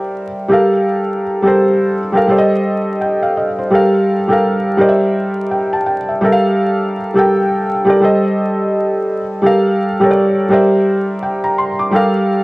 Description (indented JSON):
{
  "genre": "hip hop",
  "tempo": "84 BPM",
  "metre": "4/4",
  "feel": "swing 60% on 16ths",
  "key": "G minor",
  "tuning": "A4 = 440 Hz",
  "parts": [
    { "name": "felt-muted upright piano", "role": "solo", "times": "0.0-12.4 s", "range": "G3 to D6", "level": "-12 LUFS", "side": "equal", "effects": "low-pass filter" }
  ],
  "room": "moderate plate reverb, RT60 2.6 s",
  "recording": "dark, warm production, vinyl crackle",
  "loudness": "-12 LUFS",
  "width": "side -22 dB against mid",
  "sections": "0.0-12.4 A section",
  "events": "none",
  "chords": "0.5 Gm7; 2.3 Am7b5/G; 3.7 Gm7; 4.8 C9/G; 6.2 Gm7; 8.0 Am7b5/G; 9.4 Gm7; 10.5 C9/G; 11.9 Gm7"
}